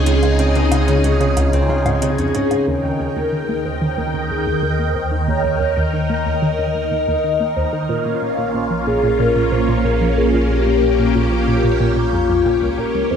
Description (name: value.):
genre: ambient, sequencer-driven space music.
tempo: 92 BPM.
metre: 4/4.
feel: straight.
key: unclear.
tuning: A4 = 440 Hz.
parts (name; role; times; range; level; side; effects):
phased string machine; sustained chords; 0.0-13.2 s; Db3 to G5; -20 LUFS; equal; ensemble chorus, phaser.
concert harp; arpeggios; 0.0-5.2 s; Db3 to F4; -22 LUFS; equal; auto-pan, analog delay.
round analog bass; bass; 0.0-13.2 s; F1 to Eb2; -22 LUFS; equal; none.
analog pluck; riff; 0.1-13.2 s; Db2 to Bb3; -23 LUFS; right 2 dB; chorus, analog delay.
electronic hi-hat and woodblock; percussion; 0.1-2.6 s; none; -29 LUFS; left 1 dB; overdrive, analog delay.
mellow horn-like synth lead; melody; 2.3-13.2 s; F4 to Eb5; -20 LUFS; left 2 dB; wide subtle chorus, analog delay.
room: moderate plate reverb, RT60 2.8 s.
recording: dreamy mix soaked in reverb.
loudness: -15 LUFS.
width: side -7 dB against mid.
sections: 0.0-2.7 A section; 2.7-13.2 B section.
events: filter sweep on synth arpeggio sound 2.7-13.2.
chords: 0.0 Dbsus2; 2.7 Eb; 7.9 Bbm.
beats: | 0.07 0.72 1.37 2.02 | 2.67 3.33 3.98 4.63 | 5.28 5.93 6.59 7.24 | 7.89 8.54 9.20 9.85 | 10.50 11.15 11.80 12.46 | 13.11.